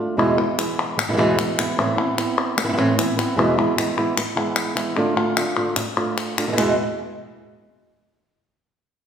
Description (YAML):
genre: flamenco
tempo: 150 BPM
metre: 4/4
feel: straight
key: E phrygian dominant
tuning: A4 = 445 Hz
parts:
  - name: flamenco guitar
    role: melody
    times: 0.0-6.7 s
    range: E2 to F4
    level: -20 LUFS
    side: right 1 dB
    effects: none
  - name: palmas hand claps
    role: percussion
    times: 0.2-6.7 s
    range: none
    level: -24 LUFS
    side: left 4 dB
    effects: none
room: wet recital hall reverb, RT60 1.5 s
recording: recorded in a church or concert hall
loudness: -18 LUFS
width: side -8 dB against mid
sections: 0.2-6.6 A section; 6.6-8.2 B section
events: break 0.0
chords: 0.2 E; 1.8 Amadd9; 3.4 E; 5.0 Dm; 6.6 N.C.